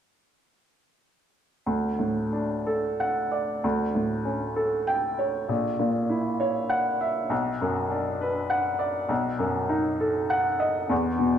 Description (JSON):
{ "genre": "classical, romantic character piece for solo piano", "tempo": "60-68 BPM", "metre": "2/4", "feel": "rubato", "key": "D major", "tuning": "A4 = 440 Hz", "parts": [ { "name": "bright upright piano", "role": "solo", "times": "1.7-11.4 s", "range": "A#1 to G5", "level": "-24 LUFS", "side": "equal", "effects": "none" } ], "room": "wet recital hall reverb, RT60 1.4 s", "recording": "none", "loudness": "-24 LUFS", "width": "side -9 dB against mid", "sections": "1.7-11.4 A section", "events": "none", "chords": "1.7 D; 3.6 A7/D; 5.5 F#7/A#; 7.3 Bm; 9.1 B7" }